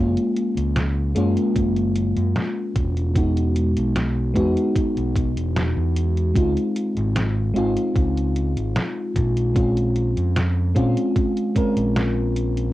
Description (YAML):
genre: vaporwave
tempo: 75 BPM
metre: 4/4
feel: straight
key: Db major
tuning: A4 = 445 Hz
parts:
  - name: mellow FM electric piano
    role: accompaniment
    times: 0.0-12.7 s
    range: Ab3 to Bb4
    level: -22 LUFS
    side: left 1 dB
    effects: lush chorus, cassette tape, analog delay, plate reverb
  - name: overdriven fingered electric bass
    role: bass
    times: 0.0-12.7 s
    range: Fb1 to Bb2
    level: -22 LUFS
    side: equal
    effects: none
  - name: detuned 8-bit digital drum machine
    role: drums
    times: 0.2-12.7 s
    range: hi-hat, snare drum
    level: -27 LUFS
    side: equal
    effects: vintage 12-bit sampler grit, cassette tape
  - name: electronic kick drum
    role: drums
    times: 1.6-11.7 s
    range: none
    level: -22 LUFS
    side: equal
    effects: vintage 12-bit sampler grit, cassette tape
room: moderate booth ambience, RT60 0.2 s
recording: home recording on cassette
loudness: -19 LUFS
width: side -16 dB against mid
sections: 0.0-12.7 A section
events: none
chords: 0.0 Gbmaj7; 3.2 Emaj7; 6.4 Dbmaj9; 9.6 Bbm7